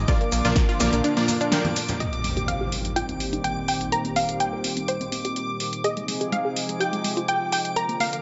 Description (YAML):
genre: progressive house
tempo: 125 BPM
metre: 4/4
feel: straight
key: C minor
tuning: A4 = 441 Hz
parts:
  - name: unison pluck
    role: melody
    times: 0.0-8.2 s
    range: C5 to Bb5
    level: -30 LUFS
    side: equal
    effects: sidechain pumping, tape echo
  - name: lush unison pad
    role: sustained chords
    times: 0.0-8.2 s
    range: Bb2 to Bb4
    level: -33 LUFS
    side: equal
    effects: chorus, sidechain pumping
  - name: fat analog bass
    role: bass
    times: 0.0-1.0 s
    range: Bb1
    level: -28 LUFS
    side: equal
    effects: tube saturation, sidechain pumping
  - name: backwards swelling texture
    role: texture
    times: 0.0-8.2 s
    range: D6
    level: -38 LUFS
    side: equal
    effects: built-in reverb, sidechain pumping
  - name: unison pluck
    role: arpeggios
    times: 0.1-8.2 s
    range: Ab3 to Bb4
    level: -31 LUFS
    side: equal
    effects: cassette tape, sidechain pumping, delay
  - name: supersaw stab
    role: stabs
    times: 0.1-1.6 s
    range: Bb2 to G5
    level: -30 LUFS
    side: equal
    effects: sidechain pumping, delay
  - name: breakbeat sampler-style drum kit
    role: drums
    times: 0.1-2.0 s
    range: hi-hat, snare drum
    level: -38 LUFS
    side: equal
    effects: none
  - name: deep house drum kit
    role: drums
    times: 0.1-8.2 s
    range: hi-hat, snare drum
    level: -32 LUFS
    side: equal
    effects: none
  - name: electronic kick drum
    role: drums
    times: 0.1-0.7 s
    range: none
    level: -24 LUFS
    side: equal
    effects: none
  - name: congas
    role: percussion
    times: 0.1-2.0 s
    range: none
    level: -35 LUFS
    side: equal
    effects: sidechain pumping on perc
  - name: maracas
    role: percussion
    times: 0.1-2.0 s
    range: none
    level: -35 LUFS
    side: equal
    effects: none
  - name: impact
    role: sound effects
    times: 2.0-3.9 s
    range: none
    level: -34 LUFS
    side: equal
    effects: none
room: moderate lush hall reverb, RT60 1.6 s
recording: nothing above 7.7 kHz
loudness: -24 LUFS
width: mono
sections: 0.0-2.0 A section; 2.0-8.2 B section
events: drop 0.0-2.0; band accent 1.5; impact 2.0-3.9; filter sweep on synth pluck 2.0-8.2; filter sweep on analog synth pad 2.0-8.2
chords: 0.1 Bb; 2.0 Cm7; 5.8 Ab6